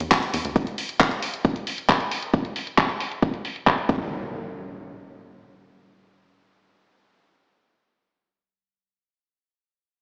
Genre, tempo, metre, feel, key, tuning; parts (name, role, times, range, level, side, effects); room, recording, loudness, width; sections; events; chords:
uplifting trance; 135 BPM; 4/4; straight; A4 = 440 Hz
tight sequencer bass; bass; 0.0-0.5 s; D2 to E2; -31 LUFS; equal; sidechain pumping
house drum kit; drums; 0.0-3.9 s; handclaps, hi-hat; -26 LUFS; equal; low-pass filter on hats, low-pass filter on perc, low-pass filter on cymbals, low-pass filter on snare, low-pass filter on room
electronic kick drum; drums; 0.1-4.0 s; -25 LUFS; equal
impact; sound effects; 3.9-8.7 s; -36 LUFS; equal
moderate lush hall reverb, RT60 1.8 s; played on a big sound system in a bare room, stone room reverb, small speaker sound; -24 LUFS; mono
0.0-4.1 A section; 4.1-7.7 B section
filter sweep on drum 0.0-4.1